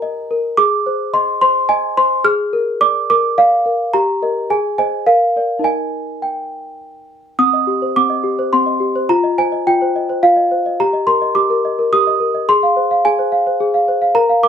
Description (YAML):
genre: classical, lullaby for celesta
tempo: 106 BPM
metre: 3/4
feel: straight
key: Eb major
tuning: A4 = 439 Hz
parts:
  - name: small celesta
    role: solo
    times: 0.0-14.5 s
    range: C4 to F6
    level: -13 LUFS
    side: equal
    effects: none
room: light reverb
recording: none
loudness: -13 LUFS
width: side -8 dB against mid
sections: 0.0-7.4 A section; 7.4-14.5 B section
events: none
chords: 0.0 Eb/G; 0.6 Ab; 2.3 Bb7/Ab; 3.9 Eb/G; 4.5 Ab; 5.1 Bb; 5.7 Eb; 7.4 Cm; 9.1 F5; 10.8 Eb/G; 12.5 Fm/Ab